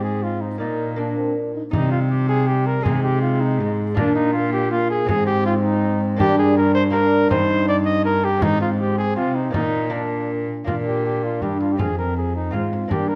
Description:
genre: classical, renaissance-style consort dance.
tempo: 161 BPM.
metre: 3/4.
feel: straight.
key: Bb mixolydian.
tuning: A4 = 440 Hz.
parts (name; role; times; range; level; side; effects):
mellow cornet; melody; 0.0-13.2 s; D4 to Eb5; -25 LUFS; equal; none.
lute; accompaniment; 0.0-13.2 s; F2 to D5; -27 LUFS; equal; none.
mellow trombone; accompaniment; 0.0-13.2 s; G3 to Eb4; -30 LUFS; equal; none.
rich cello; bass; 0.0-13.2 s; F2 to C3; -25 LUFS; equal; none.
frame drum; percussion; 1.7-13.1 s; none; -28 LUFS; equal; none.
room: wet stone room reverb, RT60 1.3 s.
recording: dark, warm production.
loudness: -20 LUFS.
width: mono.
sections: 0.0-1.7 A section; 1.7-10.7 A section; 10.7-13.2 B section.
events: none.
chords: 0.0 Ab; 0.6 Bb; 1.7 Cm; 2.9 Ab/C; 4.0 Bb; 5.1 Ab; 6.2 Gm; 7.3 Cm/G; 8.4 Ab; 9.5 Bb; 11.8 Fm.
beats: 0.23 | 0.61 0.98 1.36 | 1.74 2.11 2.48 | 2.85 3.23 3.60 | 3.97 4.34 4.71 | 5.09 5.46 5.83 | 6.20 6.57 6.94 | 7.31 7.68 8.05 | 8.42 8.79 9.17 | 9.54 9.92 10.30 | 10.67 11.04 11.42 | 11.79 12.16 12.53 | 12.90.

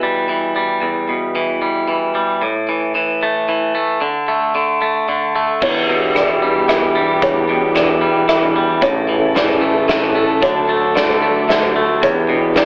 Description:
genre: post-rock.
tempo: 112 BPM.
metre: 3/4.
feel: straight.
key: E dorian.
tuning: A4 = 439 Hz.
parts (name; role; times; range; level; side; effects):
twangy electric guitar; arpeggios; 0.0-12.7 s; E2 to A3; -19 LUFS; equal; slapback echo.
dark studio string section; sustained chords; 5.6-12.7 s; C#3 to A4; -23 LUFS; equal; none.
felt-muted upright piano; arpeggios; 5.6-12.7 s; C#5 to E5; -23 LUFS; equal; slapback echo.
growling picked electric bass; bass; 5.6-12.7 s; A1 to E2; -22 LUFS; equal; overdrive.
huge arena drum kit; drums; 5.6-12.7 s; crash cymbal, hi-hat, kick drum, rim click, snare drum; -23 LUFS; equal; none.
room: moderate large studio reverb, RT60 1.1 s, small room ambience.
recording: telephone sound.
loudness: -16 LUFS.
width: mono.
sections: 0.0-5.6 A section; 5.6-12.7 A section.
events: none.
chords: 0.0 Em; 2.4 A5; 4.0 D5; 5.6 Em7; 8.8 A; 10.4 D; 12.0 Em7.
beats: 0.29 | 0.83 1.36 1.89 | 2.42 2.96 3.49 | 4.02 4.56 5.09 | 5.62 6.16 6.69 | 7.22 7.76 8.29 | 8.82 9.36 9.89 | 10.43 10.96 11.49 | 12.03 12.56.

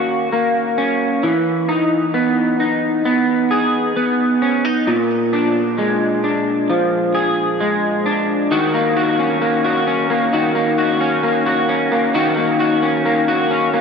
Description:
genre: dream pop.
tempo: 66 BPM.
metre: 4/4.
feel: straight.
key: Eb phrygian.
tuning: A4 = 440 Hz.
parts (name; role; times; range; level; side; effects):
electric guitar through a small old amp; solo; 0.0-13.8 s; Bb2 to G#4; -15 LUFS; equal; analog chorus, ping-pong delay.
room: moderate huge ambient reverb, RT60 7.8 s.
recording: none.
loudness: -15 LUFS.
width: side -6 dB against mid.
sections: 0.0-8.5 A section; 8.5-13.8 B section.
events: none.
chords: 0.0 Ebm7; 1.2 Emaj7; 4.9 Bb7; 8.5 Ebm7.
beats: 0.33 | 1.24 2.15 3.05 3.96 | 4.87 5.78 6.69 7.60 | 8.51 9.42 10.33 11.24 | 12.14 13.05.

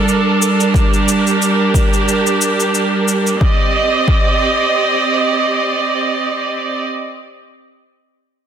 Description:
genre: organic downtempo.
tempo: 90 BPM.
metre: 4/4.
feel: swing 55% on 16ths.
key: C dorian.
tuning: A4 = 441 Hz.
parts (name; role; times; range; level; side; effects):
rich studio string section; sustained chords; 0.0-6.8 s; G3 to Eb5; -14 LUFS; right 2 dB; sidechain pumping.
cabasa; drums; 0.1-3.4 s; none; -22 LUFS; left 2 dB; none.
electronic kick drum; drums; 0.7-4.3 s; none; -15 LUFS; equal; none.
room: moderate recital hall reverb, RT60 1.7 s, small room ambience.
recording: dense, heavily limited modern master.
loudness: -12 LUFS.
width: side -8 dB against mid.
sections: 0.0-3.4 A section; 3.4-6.1 B section.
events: none.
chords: 0.0 Gmadd9; 3.4 Cmadd9.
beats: 0.08 | 0.74 1.41 2.08 2.74 | 3.41 4.08 4.74 5.41.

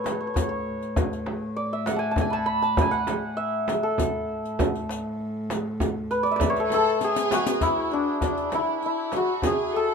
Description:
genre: Persian modal ensemble.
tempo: 99 BPM.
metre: 3/4.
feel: straight.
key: A dastgah mahur.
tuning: A4 = 435 Hz.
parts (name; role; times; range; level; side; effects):
santur; melody; 0.0-9.9 s; D4 to B5; -25 LUFS; equal; none.
warm cello; drone; 0.0-7.7 s; A2; -33 LUFS; equal; none.
frame drum; percussion; 0.1-9.6 s; none; -29 LUFS; right 4 dB; none.
riq; percussion; 0.1-9.6 s; none; -34 LUFS; left 7 dB; none.
tombak; percussion; 0.1-9.9 s; none; -30 LUFS; left 2 dB; none.
rich studio violin section; second line; 6.6-9.9 s; D4 to B4; -30 LUFS; right 1 dB; none.
breathy mellow ney; second line; 6.7-9.9 s; D4 to A4; -30 LUFS; left 7 dB; none.
room: moderate small room ambience, RT60 0.5 s.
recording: minimal, uncompressed stereo recording.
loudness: -23 LUFS.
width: side -5 dB against mid.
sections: 0.0-7.6 A section; 7.6-9.9 B section.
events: drum fill 7.0-7.6.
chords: none.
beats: | 0.36 0.97 1.57 | 2.18 2.78 3.38 | 3.99 4.59 5.20 | 5.80 6.41 7.01 | 7.62 8.22 8.83 | 9.43.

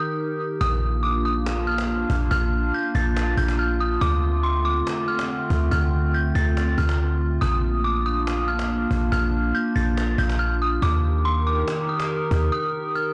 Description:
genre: hip hop, atmospheric cloud-rap.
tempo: 141 BPM.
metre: 4/4.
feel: half-time.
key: Bb major.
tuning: A4 = 439 Hz.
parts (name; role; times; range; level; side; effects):
dark detuned synth bell; melody; 0.0-13.1 s; C6 to A6; -29 LUFS; equal; chorus, delay.
warbly tape-like pad; sustained chords; 0.0-13.1 s; D3 to Bb4; -29 LUFS; equal; chorus, built-in reverb.
clean 808-style bass; bass; 0.6-12.5 s; Bb1 to Eb2; -25 LUFS; equal; tube saturation.
cajon; drums; 0.6-13.0 s; none; -35 LUFS; equal; none.
room: little or no reverb.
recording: blown-out, overdriven recording, overdrive, nothing above 10.5 kHz.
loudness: -23 LUFS.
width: mono.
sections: 0.6-13.1 A section.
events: break 0.0-0.6; kick muted 12.5-13.1.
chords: 0.0 Eb; 0.6 Bb; 4.0 Dm7; 7.4 Bb; 10.8 Eb.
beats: 0.18 | 0.61 1.03 1.46 1.89 | 2.31 2.74 3.16 3.59 | 4.01 4.44 4.87 5.29 | 5.72 6.14 6.57 6.99 | 7.42 7.84 8.27 8.70 | 9.12 9.55 9.97 10.40 | 10.82 11.25 11.67 12.10 | 12.53 12.95.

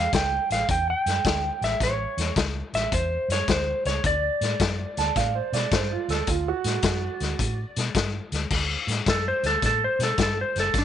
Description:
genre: electric blues shuffle.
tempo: 107 BPM.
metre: 4/4.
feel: swing 67% on 8ths.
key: D mixolydian.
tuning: A4 = 440 Hz.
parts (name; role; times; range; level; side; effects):
electric slide guitar; melody; 0.0-10.8 s; D4 to G5; -26 LUFS; right 1 dB; slapback echo.
vintage muted fingered electric bass; bass; 0.0-10.8 s; F#1 to B2; -29 LUFS; equal; none.
raw garage drum kit; drums; 0.1-10.8 s; crash cymbal, hi-hat, kick drum, snare drum; -26 LUFS; left 3 dB; none.
warm upright piano; second line; 5.0-7.6 s; F4 to A5; -28 LUFS; right 12 dB; none.
room: light reverb, studio reverb.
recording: 1960s-style stereo, nothing above 10.9 kHz.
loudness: -22 LUFS.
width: side -10 dB against mid.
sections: 0.0-8.5 A section; 8.5-10.8 B section.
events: electric slide guitar solo 8.5-10.8.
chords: 0.0 A6; 4.0 D; 8.5 D6.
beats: 0.13 0.69 1.25 | 1.81 2.37 2.92 3.48 | 4.04 4.60 5.16 5.72 | 6.28 6.84 7.39 7.95 | 8.51 9.07 9.63 10.19 | 10.74.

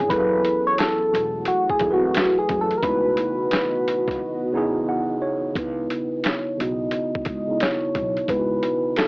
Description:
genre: lo-fi hip hop.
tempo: 88 BPM.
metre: 4/4.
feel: swing 65% on 16ths.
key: C# minor.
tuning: A4 = 439 Hz.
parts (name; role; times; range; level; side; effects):
soft struck synth lead; melody; 0.0-9.1 s; F#4 to D#5; -22 LUFS; equal; chorus, low-pass filter, cassette tape.
mellow tine electric piano; accompaniment; 0.0-9.1 s; C#3 to F#5; -25 LUFS; right 1 dB; medium stereo tremolo, cassette tape, low-pass filter, plate reverb.
deep dark ambient pad; sustained chords; 0.0-5.5 s; E3 to D#5; -31 LUFS; equal; chorus, built-in reverb, low-pass filter, cassette tape, plate reverb.
upright bass; bass; 0.0-8.6 s; E1 to C#2; -31 LUFS; equal; transformer saturation.
boom bap sampler-style drum kit; drums; 0.1-9.1 s; finger snaps, hi-hat, kick drum, snare drum; -26 LUFS; equal; cassette tape.
room: moderate booth ambience, RT60 0.3 s.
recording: home recording on cassette, AM radio sound.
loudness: -20 LUFS.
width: side -26 dB against mid.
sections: 0.0-5.6 A section; 5.6-9.1 B section.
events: break 4.2-5.6; tine electric piano fill 4.5-5.6; filter sweep 5.6-9.1.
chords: 0.1 F#m9; 2.8 C#m11; 5.6 C#m9.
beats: | 0.10 0.79 1.47 2.15 | 2.83 3.51 4.20 4.88 | 5.56 6.24 6.92 7.60 | 8.29 8.97.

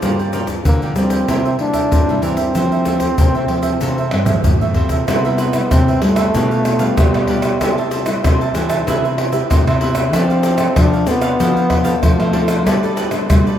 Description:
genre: samba and choro.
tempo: 95 BPM.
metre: 4/4.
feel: straight.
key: F major, C major from 5.1 s.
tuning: A4 = 440 Hz.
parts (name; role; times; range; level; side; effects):
cavaquinho; accompaniment; 0.0-13.6 s; D4 to A5; -24 LUFS; right 5 dB; none.
nylon-string guitar; accompaniment; 0.0-13.6 s; F2 to A4; -25 LUFS; left 2 dB; none.
nylon-string guitar; bass; 0.0-13.6 s; G2 to G3; -19 LUFS; equal; none.
egg shaker, surdo, pandeiro and tamborim; percussion; 0.0-13.6 s; none; -17 LUFS; equal; none.
breathy trombone; melody; 0.7-13.0 s; G3 to D4; -20 LUFS; equal; ping-pong delay.
room: moderate church reverb, RT60 3.5 s.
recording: dreamy mix soaked in reverb.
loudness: -13 LUFS.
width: side -10 dB against mid.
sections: 0.0-5.1 A section; 5.1-13.6 B section.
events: drum fill 4.1-5.1; trombone solo 5.1-13.6.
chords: 0.0 Gm7; 1.3 C7; 2.6 Fmaj7; 5.1 Cmaj7; 6.3 G7/B; 7.6 Am7/C; 8.9 Cmaj7; 10.1 F6; 11.4 Dm7/F; 12.7 Gadd9.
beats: | 0.03 0.66 1.29 1.92 | 2.56 3.19 3.82 4.45 | 5.08 5.72 6.35 6.98 | 7.61 8.24 8.88 9.51 | 10.14 10.77 11.40 12.04 | 12.67 13.30.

